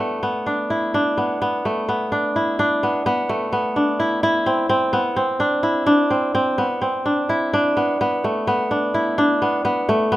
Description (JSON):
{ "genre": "contemporary instrumental, contemporary", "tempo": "255 BPM (eighths)", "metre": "7/8", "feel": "straight", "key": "unclear", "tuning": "A4 = 440 Hz", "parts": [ { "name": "kora", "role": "solo", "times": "0.0-10.2 s", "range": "A3 to E4", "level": "-18 LUFS", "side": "equal", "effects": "none" } ], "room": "moderate recital hall reverb, RT60 1.8 s", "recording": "close, detailed microphones", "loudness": "-18 LUFS", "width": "side -15 dB against mid", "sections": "0.9-10.2 A section", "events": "none", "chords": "0.0 Asus24; 4.2 Bmadd11", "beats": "0.22 0.46 0.70 | 0.94 1.18 1.41 1.65 1.88 2.12 2.35 | 2.58 2.82 3.05 3.28 3.52 3.75 3.98 | 4.22 4.45 4.69 4.92 5.16 5.39 5.63 | 5.86 6.10 6.34 6.58 6.81 7.05 7.29 | 7.53 7.76 8.00 8.24 8.47 8.71 8.94 | 9.18 9.41 9.65 9.88 10.12" }